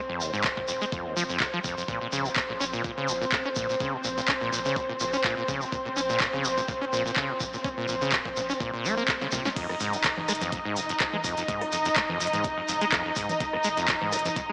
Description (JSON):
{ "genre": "acid house", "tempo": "125 BPM", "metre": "4/4", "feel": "swing 54% on 16ths", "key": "F minor", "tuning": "A4 = 440 Hz", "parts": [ { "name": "muted studio string section", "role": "sustained chords", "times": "0.0-14.5 s", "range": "C4 to Eb5", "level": "-29 LUFS", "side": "equal", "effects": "sidechain pumping" }, { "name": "acid bass, saw", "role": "riff", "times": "0.1-14.5 s", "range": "Eb2 to Db4", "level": "-30 LUFS", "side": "equal", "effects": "overdrive, wide subtle chorus, sidechain pumping, tape echo" }, { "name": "warm sub bass", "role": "bass", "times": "0.2-14.3 s", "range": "F1 to Bb2", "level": "-47 LUFS", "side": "equal", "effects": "sidechain pumping" }, { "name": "shekere", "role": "percussion", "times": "0.2-14.5 s", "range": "none", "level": "-34 LUFS", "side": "equal", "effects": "none" }, { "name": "electro analog drum machine", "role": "drums", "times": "0.4-14.5 s", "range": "congas, crash cymbal, handclaps, hi-hat, rim click, snare drum", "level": "-28 LUFS", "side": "equal", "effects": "overdrive" }, { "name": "electronic kick drum", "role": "drums", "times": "0.4-14.5 s", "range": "none", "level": "-34 LUFS", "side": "equal", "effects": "none" } ], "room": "moderate lush hall reverb, RT60 1.8 s", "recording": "small speaker sound", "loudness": "-24 LUFS", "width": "side -29 dB against mid", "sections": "0.0-14.5 A section", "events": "drum fill 9.2-9.6", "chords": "0.0 F5; 1.9 Bbm; 9.6 Fm7", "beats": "0.44 0.92 1.40 | 1.88 2.36 2.84 3.32 | 3.80 4.28 4.76 5.24 | 5.72 6.20 6.68 7.16 | 7.64 8.12 8.60 9.08 | 9.56 10.04 10.52 11.00 | 11.48 11.96 12.44 12.92 | 13.40 13.88 14.36" }